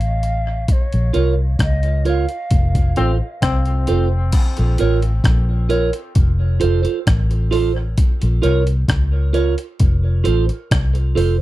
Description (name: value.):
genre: dub reggae.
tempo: 66 BPM.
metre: 4/4.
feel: straight.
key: Bb harmonic minor.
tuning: A4 = 440 Hz.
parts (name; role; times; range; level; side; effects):
breathy mellow shakuhachi; melody; 0.0-3.4 s; Db5 to F5; -29 LUFS; right 1 dB; low-pass filter, dub echo.
vintage muted fingered electric bass; bass; 0.0-11.4 s; F1 to Db2; -17 LUFS; equal; none.
breakbeat sampler-style drum kit; drums; 0.0-11.4 s; crash cymbal, hi-hat, kick drum, rim click; -17 LUFS; equal; none.
clean electric guitar; accompaniment; 1.1-11.4 s; F4 to Db5; -21 LUFS; right 6 dB; wide subtle chorus, low-pass filter, dub echo.
bright trombone; second line; 3.0-4.1 s; C4; -27 LUFS; left 4 dB; dub echo.
room: little or no reverb.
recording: dry, close 1970s-style studio recording.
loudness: -15 LUFS.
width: side -16 dB against mid.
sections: 0.0-4.3 A section; 4.3-11.4 B section.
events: break 0.0-0.7; band accent 0.7-4.3.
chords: 0.0 F; 0.7 Bbm; 2.5 F; 4.3 Bbm; 6.2 F; 8.0 Bbm; 9.8 F.